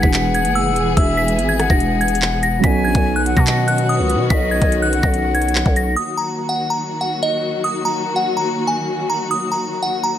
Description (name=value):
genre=hip hop, drill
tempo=144 BPM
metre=4/4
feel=half-time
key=Eb phrygian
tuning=A4 = 440 Hz
part: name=delicate synth tine bell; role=melody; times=0.0-10.2 s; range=Eb5 to B6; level=-21 LUFS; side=equal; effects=chorus
part: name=breathy silver concert flute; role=second line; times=0.0-5.9 s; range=D#5 to Ab5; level=-23 LUFS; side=left 4 dB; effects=ping-pong delay
part: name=dark grand piano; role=accompaniment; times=0.0-6.0 s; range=E3 to G#4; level=-25 LUFS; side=right 4 dB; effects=none
part: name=warm symphonic string section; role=sustained chords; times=0.0-10.2 s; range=D#3 to G#4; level=-23 LUFS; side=left 1 dB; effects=none
part: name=growling 808-style bass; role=bass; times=0.0-6.0 s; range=E1 to B2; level=-20 LUFS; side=equal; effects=none
part: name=drill drum kit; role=drums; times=0.0-5.9 s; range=handclaps, hi-hat, kick drum, rim click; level=-18 LUFS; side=equal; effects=none
room=small room ambience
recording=none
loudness=-15 LUFS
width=side -10 dB against mid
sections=0.0-6.0 A section; 6.0-10.2 B section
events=none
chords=0.0 E; 2.6 Badd9; 6.0 Ebm